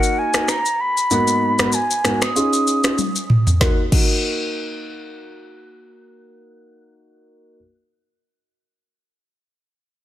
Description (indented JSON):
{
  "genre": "afrobeats",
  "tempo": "96 BPM",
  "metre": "4/4",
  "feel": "swing 55% on 16ths",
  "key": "Eb minor",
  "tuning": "A4 = 440 Hz",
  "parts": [
    { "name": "bright reedy silver concert flute", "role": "melody", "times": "0.0-6.9 s", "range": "Gb5 to Gb6", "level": "-22 LUFS", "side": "right 1 dB", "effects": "low-pass filter, tape echo" },
    { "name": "warm concert grand piano", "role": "accompaniment", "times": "0.0-7.6 s", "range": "Ab2 to Bb4", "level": "-22 LUFS", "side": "equal", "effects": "low-pass filter" },
    { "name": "afro-pop drum kit", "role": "drums", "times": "0.0-4.1 s", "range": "crash cymbal, finger snaps, kick drum, rim click, shaker, snare drum, toms", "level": "-19 LUFS", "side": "equal", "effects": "overdrive, soft clipping on snare" }
  ],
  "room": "light reverb, digital ambience",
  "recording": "dense, heavily limited modern master",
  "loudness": "-16 LUFS",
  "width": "side -13 dB against mid",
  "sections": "0.0-3.6 A section; 3.6-6.1 B section",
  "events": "filter sweep 0.0-3.6; drum fill 3.0-3.6",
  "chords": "0.0 Ebm; 1.1 Abm7; 2.4 Dbadd9; 3.6 Ebm"
}